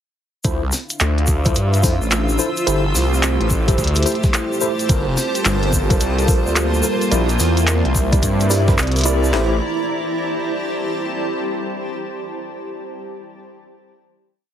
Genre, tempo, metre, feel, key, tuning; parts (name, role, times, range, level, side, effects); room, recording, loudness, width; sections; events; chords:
glitch hop; 108 BPM; 4/4; swing 64% on 16ths; A phrygian; A4 = 440 Hz
dark analog pad; sustained chords; 1.0-9.6 s; G3 to F5; -25 LUFS; right 1 dB; chorus, sidechain pumping
tine electric piano; stabs; 0.4-9.6 s; E4 to D5; -25 LUFS; equal; overdrive, fast stereo tremolo, vintage 12-bit sampler grit, sidechain pumping, ping-pong delay
phased detuned saw bass; bass; 0.4-9.6 s; F1 to G2; -18 LUFS; equal; phaser, overdrive
drum and bass drum kit; drums; 0.4-9.5 s; kick drum, snare drum; -18 LUFS; equal; overdrive
tube shaker; percussion; 0.4-9.3 s; -26 LUFS; left 2 dB
granular cloud pad; texture; 1.6-11.5 s; Bb3 to E6; -24 LUFS; right 1 dB; built-in reverb, sidechain pumping
glitchy drum kit; drums; 0.5-9.1 s; handclaps, hi-hat, snare drum; -22 LUFS; equal
light reverb, digital ambience; heavily compressed radio sound, multiband compression; -16 LUFS; side -10 dB against mid
0.4-9.3 drop; 9.3-11.6 final chord
drop 0.4-9.3
0.4 Dm9; 2.7 Am7; 4.9 Gm11; 7.1 C9; 9.3 Am7